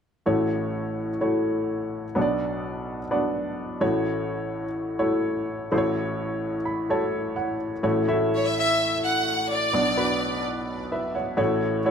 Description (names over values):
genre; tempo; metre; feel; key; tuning
pop; 127 BPM; 4/4; straight; A major; A4 = 441 Hz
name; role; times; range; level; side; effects
clear upright piano; accompaniment; 0.3-11.9 s; A1 to B5; -24 LUFS; equal; none
clear studio violin section; melody; 8.4-10.5 s; C#5 to F#5; -23 LUFS; equal; none
room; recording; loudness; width
light reverb; none; -23 LUFS; side -7 dB against mid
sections
0.3-7.8 A section; 7.8-11.9 B section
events
upright piano fill 6.4-7.8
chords
0.3 A6; 2.2 Bm; 3.8 A6; 9.7 Bm; 11.4 A6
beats
| 0.28 0.75 1.22 1.70 | 2.17 2.64 3.11 3.59 | 4.06 4.53 5.00 5.48 | 5.95 6.42 6.90 7.37 | 7.84 8.31 8.79 9.26 | 9.73 10.20 10.68 11.15 | 11.62